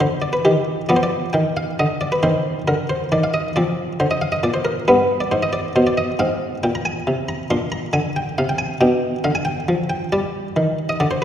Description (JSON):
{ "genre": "classical, baroque-style suite movement for harpsichord", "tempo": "91 BPM (dotted quarters)", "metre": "12/8", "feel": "rubato", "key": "unclear", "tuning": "A4 = 442 Hz", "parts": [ { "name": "buff-stop harpsichord", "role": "solo", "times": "0.0-11.2 s", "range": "G2 to C6", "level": "-17 LUFS", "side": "equal", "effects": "none" } ], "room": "wet concert hall reverb, RT60 2.2 s", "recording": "heard from further back in the room", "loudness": "-17 LUFS", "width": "side -10 dB against mid", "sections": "0.0-11.2 A section", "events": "none", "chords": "0.0 G; 0.9 G7b13; 2.2 Cm; 3.6 Bbadd9; 4.9 G; 6.2 Ab; 7.5 Bb; 8.8 G7/B" }